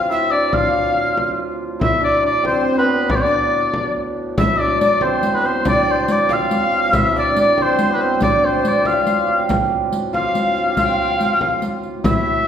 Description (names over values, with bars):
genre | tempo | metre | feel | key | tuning
medieval dance | 94 BPM (dotted quarters) | 6/8 | straight | D dorian | A4 = 437 Hz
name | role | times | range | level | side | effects
breathy alto recorder | second line | 0.0-12.5 s | B4 to G5 | -24 LUFS | left 3 dB | none
hammered dulcimer | second line | 0.0-12.5 s | B3 to G4 | -21 LUFS | right 1 dB | none
hand-pumped harmonium | drone | 0.0-12.5 s | D2 to A2 | -28 LUFS | left 1 dB | none
clear shawm | melody | 0.1-12.5 s | B4 to F5 | -18 LUFS | equal | none
frame drum | percussion | 0.5-12.4 s | none | -24 LUFS | left 1 dB | none
riq | percussion | 4.4-12.2 s | none | -25 LUFS | left 1 dB | none
room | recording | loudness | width
wet large studio reverb, RT60 1.3 s | band playing live in one room | -15 LUFS | side -8 dB against mid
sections
0.0-4.4 A section; 4.4-12.5 A section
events
none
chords
none